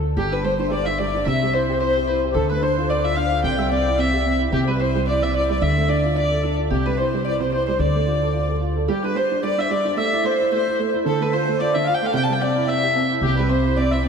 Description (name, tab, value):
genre	celtic folk, Celtic reel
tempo	220 BPM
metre	4/4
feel	swing 56% on 8ths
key	unclear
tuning	A4 = 441 Hz
part	dark upright piano	accompaniment	0.0-14.1 s	C3 to A4	-23 LUFS	right 3 dB	none
part	upright bass	bass	0.0-8.9, 13.2-14.1 s	G1 to D2	-24 LUFS	left 1 dB	none
part	dark fiddle	melody	0.2-14.1 s	G4 to A5	-22 LUFS	left 1 dB	none
part	accordion	second line	0.2-14.1 s	G4 to G5	-29 LUFS	left 3 dB	none
part	mandolin	second line	0.2-14.1 s	G4 to G5	-29 LUFS	right 2 dB	none
room	wet huge ambient reverb, RT60 4.4 s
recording	heard from further back in the room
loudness	-18 LUFS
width	side -6 dB against mid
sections	0.2-8.9 A section; 8.9-14.1 A section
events	none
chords	0.2 G5; 1.3 C; 2.3 Dm; 3.4 C; 5.6 Dmadd9; 6.7 C; 7.8 Dm; 8.9 Gsus4; 10.0 Am; 11.1 Dm; 12.1 C